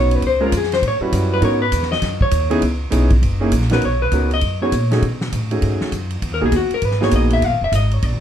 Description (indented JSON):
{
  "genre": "jazz, small-group swing and bop",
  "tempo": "200 BPM",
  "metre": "4/4",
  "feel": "swing 63% on 8ths",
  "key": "unclear",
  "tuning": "A4 = 440 Hz",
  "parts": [
    { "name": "vintage hollow-body jazz guitar", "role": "melody", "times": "0.0-8.2 s", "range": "E#4 to F5", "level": "-20 LUFS", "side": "left 2 dB", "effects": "none" },
    { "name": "clear concert grand piano", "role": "accompaniment", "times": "0.0-7.4 s", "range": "G3 to C#5", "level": "-20 LUFS", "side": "right 1 dB", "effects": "none" },
    { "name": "upright bass", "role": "bass", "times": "0.0-8.2 s", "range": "F1 to B2", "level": "-19 LUFS", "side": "equal", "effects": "none" },
    { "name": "swinging big-band drum kit", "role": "drums", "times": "0.1-8.1 s", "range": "hi-hat, kick drum, ride cymbal, snare drum", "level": "-25 LUFS", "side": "equal", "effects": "none" }
  ],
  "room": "light reverb",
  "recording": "dark, warm production",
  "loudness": "-15 LUFS",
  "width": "side -9 dB against mid",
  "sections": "0.0-3.8 A section; 3.8-8.2 A section",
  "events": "hollow-body jazz guitar solo 0.0-8.2",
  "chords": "0.2 A#m9; 0.8 A13; 1.4 G#m11; 2.6 C#m7; 3.2 F#13; 3.8 Bmaj9; 5.0 B13; 6.2 Emaj9#11 (rootless); 7.4 Fdim",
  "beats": "| 0.23 0.53 0.83 1.13 | 1.43 1.73 2.03 2.33 | 2.63 2.93 3.23 3.53 | 3.83 4.13 4.43 4.73 | 5.03 5.33 5.63 5.93 | 6.23 6.53 6.83 7.13 | 7.43 7.73 8.03"
}